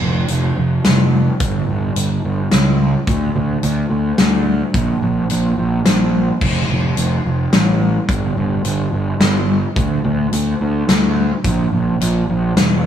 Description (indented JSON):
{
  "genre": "post-rock",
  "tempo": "108 BPM",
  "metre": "3/4",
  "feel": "straight",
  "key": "unclear",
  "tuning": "A4 = 440 Hz",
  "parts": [
    { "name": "fuzz picked electric bass", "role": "bass", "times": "0.0-12.9 s", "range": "E1 to D2", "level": "-16 LUFS", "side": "right 1 dB", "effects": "overdrive" },
    { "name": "huge arena drum kit", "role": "drums", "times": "0.3-12.7 s", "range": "crash cymbal, hi-hat, kick drum, snare drum", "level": "-18 LUFS", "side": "left 1 dB", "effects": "none" }
  ],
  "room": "little or no reverb",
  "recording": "none",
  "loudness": "-14 LUFS",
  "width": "side -9 dB against mid",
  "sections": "0.0-12.9 A section",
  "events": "none",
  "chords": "none",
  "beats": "0.29 0.84 | 1.40 1.96 2.51 | 3.07 3.62 4.18 | 4.74 5.29 5.85 | 6.41 6.96 7.52 | 8.08 8.64 9.20 | 9.76 10.32 10.88 | 11.44 12.00 12.56"
}